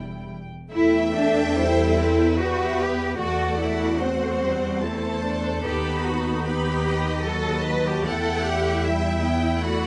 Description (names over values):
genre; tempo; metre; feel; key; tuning
classical, slow romantic movement for string orchestra; 74 BPM; 3/4; rubato; E minor; A4 = 441 Hz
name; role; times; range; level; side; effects
rich symphonic violin section; melody; 0.0-9.9 s; A4 to G5; -33 LUFS; equal; none
rich symphonic violin section; second line; 0.0-9.9 s; E4 to B5; -32 LUFS; equal; none
rich symphonic viola section; accompaniment; 0.0-9.9 s; F#3 to A4; -30 LUFS; equal; none
rich studio cello section; bass; 0.0-9.9 s; E2 to B4; -28 LUFS; equal; none
rich studio double bass section; bass; 0.0-9.9 s; E1 to E2; -30 LUFS; equal; none
room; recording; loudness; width
moderate studio reverb, RT60 0.6 s; nothing above 10.7 kHz; -23 LUFS; mono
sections
0.7-9.9 A section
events
none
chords
0.0 Em; 3.2 F#m7b5/E; 5.6 B7/D#; 8.1 Em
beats
| 0.72 1.56 2.38 | 3.19 3.99 4.81 | 5.63 6.44 7.25 | 8.05 8.84 9.63